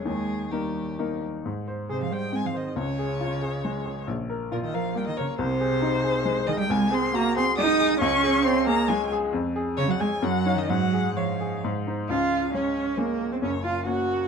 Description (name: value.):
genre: quick classical-period movement for piano trio.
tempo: 136 BPM.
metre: 3/4.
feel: rubato.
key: Ab major, Db major from 6.7 s.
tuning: A4 = 440 Hz.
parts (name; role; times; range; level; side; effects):
warm violin; melody; 0.0-14.3 s; G4 to Eb6; -29 LUFS; left 5 dB; none.
warm cello; second line; 0.0-14.3 s; Bb2 to Gb4; -26 LUFS; right 5 dB; none.
clear grand piano; accompaniment; 0.0-14.3 s; Gb1 to Db5; -28 LUFS; left 2 dB; none.
room: moderate small room reverb, RT60 0.5 s.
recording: dark, warm production.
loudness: -23 LUFS.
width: side -6 dB against mid.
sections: 0.0-1.5 A section; 1.5-12.1 B section; 12.1-14.3 C section.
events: none.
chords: 0.0 Eb; 1.5 Ab; 2.8 Db; 4.1 Bb5; 5.4 Ab/C; 6.7 Ab7/C; 8.0 Db5; 9.3 Db/F; 10.2 Ebm7/Gb; 10.7 Db/Ab; 11.6 Ab; 12.1 Db; 13.4 Gb.